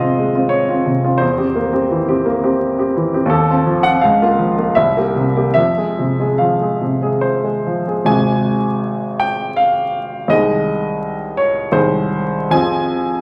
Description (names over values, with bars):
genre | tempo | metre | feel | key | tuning
classical, romantic character piece for solo piano | 66-88 BPM | 3/4 | rubato | F minor, Ab major from 8.1 s | A4 = 441 Hz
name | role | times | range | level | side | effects
clear baby grand piano | solo | 0.0-13.2 s | Ab1 to Ab5 | -16 LUFS | equal | none
room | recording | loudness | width
wet recital hall reverb, RT60 1.4 s | vinyl crackle | -16 LUFS | mono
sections
0.0-8.1 A section; 8.1-13.2 B section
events
none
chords
0.0 Fm; 1.2 C7/E; 3.3 F7/Eb; 4.0 Bbm/Db; 4.8 C7; 5.6 Fm; 8.1 Ab; 10.3 Ab/C; 12.5 Fm